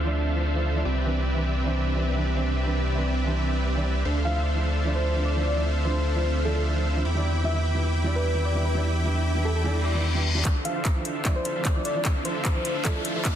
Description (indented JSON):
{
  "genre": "future bass",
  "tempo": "150 BPM",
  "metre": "4/4",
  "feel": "swing 53% on 16ths, half-time",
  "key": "D dorian",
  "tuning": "A4 = 436 Hz",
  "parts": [
    { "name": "felt-muted upright piano", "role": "accompaniment", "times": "0.0-13.2 s", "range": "E3 to D5", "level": "-32 LUFS", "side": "right 2 dB", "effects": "sidechain pumping, ping-pong delay" },
    { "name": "shimmering ambient pad", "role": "sustained chords", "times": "0.0-13.4 s", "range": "C3 to B4", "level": "-37 LUFS", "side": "equal", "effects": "none" },
    { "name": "dense compressed supersaw", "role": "riff", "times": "0.0-13.3 s", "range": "C4 to D6", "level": "-30 LUFS", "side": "equal", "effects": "sidechain pumping, low-pass filter, ping-pong delay" },
    { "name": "saturated sub bass", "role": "bass", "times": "0.0-13.4 s", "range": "C2 to E2", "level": "-25 LUFS", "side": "equal", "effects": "sidechain pumping, high-pass filter" },
    { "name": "soft struck synth lead", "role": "melody", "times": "4.2-13.0 s", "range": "A4 to F5", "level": "-32 LUFS", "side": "left 1 dB", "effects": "chorus, sidechain pumping, dub echo" },
    { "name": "reverse cymbal and riser", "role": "sound effects", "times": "9.8-13.4 s", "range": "none", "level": "-34 LUFS", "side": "left 4 dB", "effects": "none" },
    { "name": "electronic kick drum", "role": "drums", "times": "10.4-13.3 s", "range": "none", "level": "-25 LUFS", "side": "equal", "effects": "studio reverb" },
    { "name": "trap drum kit", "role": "drums", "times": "10.5-13.3 s", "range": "handclaps, hi-hat", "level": "-31 LUFS", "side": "equal", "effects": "soft clipping on snare, studio reverb" }
  ],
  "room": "light reverb",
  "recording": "dense, heavily limited modern master",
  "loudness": "-23 LUFS",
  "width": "side -10 dB against mid",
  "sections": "0.0-10.5 A section; 10.5-13.4 B section",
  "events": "reverse cymbal 9.8-10.5; build-up 10.5-13.4; drum fill 10.5-13.4; riser 10.5-13.4",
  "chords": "0.0 Dm9; 0.9 Cmaj9; 4.1 Dm9; 7.1 Em7; 10.5 Dm9",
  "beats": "0.05 0.45 | 0.85 1.25 1.65 2.05 | 2.45 2.85 3.25 3.65 | 4.05 4.45 4.85 5.25 | 5.65 6.05 6.45 6.85 | 7.25 7.65 8.05 8.45 | 8.85 9.25 9.65 10.05 | 10.45 10.85 11.25 11.65 | 12.05 12.45 12.85 13.25"
}